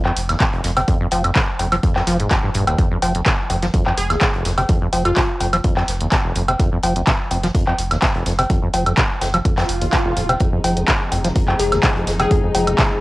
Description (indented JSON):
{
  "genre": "acid house",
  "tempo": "126 BPM",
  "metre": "4/4",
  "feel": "straight",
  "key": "F minor",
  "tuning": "A4 = 440 Hz",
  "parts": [
    { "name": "acid bass, saw", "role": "riff", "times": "0.0-12.8 s", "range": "F1 to F3", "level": "-22 LUFS", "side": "equal", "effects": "tube saturation, wide subtle chorus, cassette tape, analog delay" },
    { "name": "punchy analog drum machine", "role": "drums", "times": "0.1-12.9 s", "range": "cowbell, handclaps, hi-hat, woodblock", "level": "-20 LUFS", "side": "equal", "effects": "cassette tape" },
    { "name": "warm sub bass", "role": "bass", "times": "0.2-12.7 s", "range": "Eb1 to F1", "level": "-24 LUFS", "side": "equal", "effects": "tube saturation, sidechain pumping" },
    { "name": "swinging big-band drum kit", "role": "drums", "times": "0.2-12.9 s", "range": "hi-hat, snare drum", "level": "-34 LUFS", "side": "left 1 dB", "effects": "none" },
    { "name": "electronic kick drum", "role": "drums", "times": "0.4-12.9 s", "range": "none", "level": "-19 LUFS", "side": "equal", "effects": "cassette tape" },
    { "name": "glassy wavetable pluck", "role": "melody", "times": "4.0-5.2, 11.6-12.7 s", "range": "F4 to Ab4", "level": "-23 LUFS", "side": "left 3 dB", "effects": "chorus, cassette tape, analog delay" },
    { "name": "swell", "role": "sound effects", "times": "9.6-10.4 s", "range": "none", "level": "-24 LUFS", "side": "right 2 dB", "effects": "none" },
    { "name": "dark studio string section", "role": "sustained chords", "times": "10.4-13.0 s", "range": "C3 to Eb4", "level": "-26 LUFS", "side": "left 1 dB", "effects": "sidechain pumping, cassette tape" }
  ],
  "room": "moderate booth ambience, RT60 0.2 s",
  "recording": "home recording on cassette",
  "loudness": "-15 LUFS",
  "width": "side -19 dB against mid",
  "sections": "0.0-13.0 A section",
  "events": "swell 9.6-10.4",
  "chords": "0.0 Fm7"
}